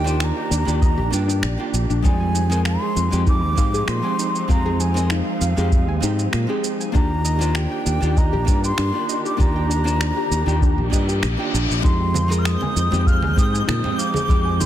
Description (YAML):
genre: sunset chillout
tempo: 98 BPM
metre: 4/4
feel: straight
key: F dorian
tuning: A4 = 438 Hz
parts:
  - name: breathy mellow concert flute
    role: melody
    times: 0.0-14.7 s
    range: F5 to F6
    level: -26 LUFS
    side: equal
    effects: digital delay
  - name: archtop guitar, miked and amplified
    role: accompaniment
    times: 0.0-14.7 s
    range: G3 to C5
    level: -27 LUFS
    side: equal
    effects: auto-pan, tape echo
  - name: muted studio string section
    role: sustained chords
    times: 0.0-14.7 s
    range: Eb3 to G4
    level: -30 LUFS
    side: right 3 dB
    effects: none
  - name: soft round pluck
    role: arpeggios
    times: 0.0-14.7 s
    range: D4 to Ab5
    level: -30 LUFS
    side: left 4 dB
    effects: chorus, tape echo
  - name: fingered electric bass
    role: bass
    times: 0.0-14.7 s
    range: Bb1 to Bb2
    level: -21 LUFS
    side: equal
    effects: none
  - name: electronic shaker and finger snaps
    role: drums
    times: 0.1-14.7 s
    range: none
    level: -29 LUFS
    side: right 2 dB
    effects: overdrive, small room ambience, soft clipping on snare
  - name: electronic kick drum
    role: drums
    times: 0.8-14.4 s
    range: none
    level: -19 LUFS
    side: equal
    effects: overdrive, small room ambience
  - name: reverse cymbal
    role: sound effects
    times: 10.9-11.8 s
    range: none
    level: -30 LUFS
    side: left 5 dB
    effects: none
  - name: twinkling granular texture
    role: texture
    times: 12.2-14.7 s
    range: G6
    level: -34 LUFS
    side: left 1 dB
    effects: built-in reverb
  - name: congas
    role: percussion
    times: 12.1-14.7 s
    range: none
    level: -28 LUFS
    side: right 4 dB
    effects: none
room: light reverb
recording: dense, heavily limited modern master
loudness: -17 LUFS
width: side -11 dB against mid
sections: 0.0-14.7 A section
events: reverse cymbal 10.9-11.8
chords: 0.0 Ebmaj7; 2.0 Fm7; 6.9 Ebmaj7; 11.8 Fm7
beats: 0.21 0.82 1.43 | 2.04 2.66 3.27 3.88 | 4.49 5.11 5.72 6.33 | 6.94 7.55 8.17 8.78 | 9.39 10.00 10.62 11.23 | 11.84 12.45 13.06 13.68 | 14.29